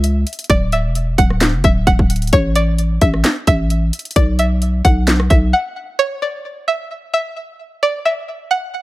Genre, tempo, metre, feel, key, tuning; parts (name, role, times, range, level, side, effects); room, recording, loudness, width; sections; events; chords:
hip hop, trap; 131 BPM; 4/4; half-time; A4 = 439 Hz
string-like resonator pluck; melody; 0.0-8.8 s; C#5 to F#5; -18 LUFS; right 1 dB; chorus, digital delay
growling 808-style bass; bass; 0.0-5.5 s; D1 to C#2; -16 LUFS; equal
trap drum kit; drums; 0.0-5.4 s; handclaps, hi-hat, kick drum, rim click, snare drum; -15 LUFS; equal; overdrive
little or no reverb; -14 LUFS; side -17 dB against mid
0.0-6.0 A section; 6.0-8.8 B section
break 5.5-6.0
0.5 D; 2.3 A5; 4.2 B5; 6.0 N.C.